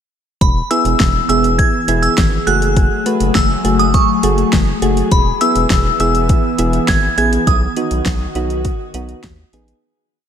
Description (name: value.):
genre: synth-pop.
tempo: 102 BPM.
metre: 4/4.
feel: straight.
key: E major.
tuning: A4 = 440 Hz.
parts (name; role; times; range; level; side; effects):
glassy synth bell; melody; 0.4-9.5 s; B5 to G#6; -18 LUFS; equal; chorus, phaser, slapback echo, shimmer reverb.
phased analog pad; sustained chords; 1.0-9.8 s; D#3 to G#4; -21 LUFS; left 2 dB; phaser, chorus.
round analog bass; bass; 0.4-9.7 s; E1 to D#2; -19 LUFS; equal; none.
deep house drum kit; drums; 0.4-9.8 s; hi-hat, kick drum, snare drum; -17 LUFS; equal; none.
soft electric-piano-like synth keys; accompaniment; 0.7-9.8 s; A3 to B4; -20 LUFS; right 2 dB; chorus, shimmer reverb.
room: light reverb, digital ambience.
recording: none.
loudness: -12 LUFS.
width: side -8 dB against mid.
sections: 0.4-9.8 verse.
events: fade-out 7.5-9.8.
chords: 0.4 E; 2.5 F#madd9; 5.1 E; 7.5 B.